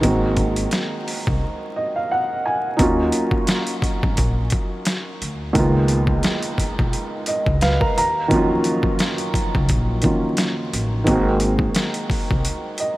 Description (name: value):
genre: hip hop, boom-bap hip-hop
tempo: 87 BPM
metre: 4/4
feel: swing 54% on 16ths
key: Eb minor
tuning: A4 = 438 Hz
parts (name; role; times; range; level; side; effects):
- dark upright piano; accompaniment; 0.0-13.0 s; Db2 to Bb5; -21 LUFS; right 1 dB; cassette tape, high-pass filter, low-pass filter
- upright bass; bass; 0.0-12.4 s; Ab1 to Eb2; -22 LUFS; equal; none
- boom bap sampler-style drum kit; drums; 0.0-13.0 s; hi-hat, kick drum, snare drum; -22 LUFS; equal; overdrive
room: moderate huge ambient reverb, RT60 9.1 s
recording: dreamy mix soaked in reverb, vinyl crackle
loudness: -18 LUFS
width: side -17 dB against mid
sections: 0.0-2.8 A section; 2.8-13.0 B section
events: break 1.4-2.8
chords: 0.0 Ab7; 2.8 Ebm9; 5.6 Db13; 8.0 Ebm9; 11.1 Ab7